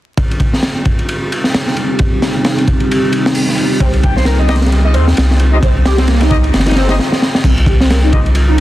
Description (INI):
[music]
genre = breakbeat, breaks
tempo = 132 BPM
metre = 4/4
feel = swing 58% on 16ths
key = C minor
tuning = A4 = 440 Hz
[part]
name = dark analog pad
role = sustained chords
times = 0.2-7.0 s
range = C4 to G4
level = -19 LUFS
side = right 1 dB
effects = chorus, vintage 12-bit sampler grit, sidechain pumping
[part]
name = crunchy breakbeat drum kit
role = drums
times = 0.2-8.6 s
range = crash cymbal, hi-hat, kick drum, ride cymbal, snare drum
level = -13 LUFS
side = equal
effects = none
[part]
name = overdriven synth lead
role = riff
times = 3.8-8.6 s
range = Bb3 to G4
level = -19 LUFS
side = equal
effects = distortion, phaser, lush chorus, cassette tape, ping-pong delay
[part]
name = saturated sub bass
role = bass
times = 3.8-8.6 s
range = G1 to Eb2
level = -12 LUFS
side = equal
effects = none
[part]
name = warm brass ensemble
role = stabs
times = 4.5-8.2 s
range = Eb4 to Eb5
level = -23 LUFS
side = left 2 dB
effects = low-pass filter, ping-pong delay
[sound]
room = light reverb, studio ambience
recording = dense, heavily limited modern master, vinyl crackle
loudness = -10 LUFS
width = side -15 dB against mid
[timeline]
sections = 0.2-7.4 A section; 7.4-8.6 B section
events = drum fill 7.0-7.4; stop 7.0-7.4; filter sweep on analog synth lead 7.4-8.6; filter sweep on brass ensemble 7.4-8.6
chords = 0.2 Cm